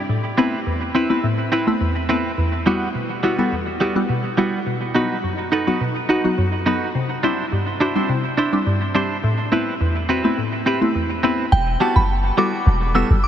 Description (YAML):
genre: dancehall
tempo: 105 BPM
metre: 4/4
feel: straight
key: E minor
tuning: A4 = 440 Hz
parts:
  - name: clean electric guitar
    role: arpeggios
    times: 0.0-13.2 s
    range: G3 to C5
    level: -23 LUFS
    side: right 4 dB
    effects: analog delay
  - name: glassy wavetable pluck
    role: accompaniment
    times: 0.1-13.1 s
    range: E2 to A4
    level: -20 LUFS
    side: left 1 dB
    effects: chorus
  - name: glassy synth bell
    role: melody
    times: 11.5-13.3 s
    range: G5 to E6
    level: -21 LUFS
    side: right 2 dB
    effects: chorus, tremolo, analog delay
  - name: warm 808-style bass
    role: bass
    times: 11.5-13.3 s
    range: E1 to F#1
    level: -17 LUFS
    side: equal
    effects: none
room: wet huge ambient reverb, RT60 6.9 s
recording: dreamy mix soaked in reverb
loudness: -17 LUFS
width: side -9 dB against mid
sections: 0.0-11.5 A section; 11.5-13.3 B section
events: none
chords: 0.1 Amadd9; 2.4 Emadd9; 4.7 B; 7.0 Cadd9; 9.2 Amadd9; 11.5 Emadd9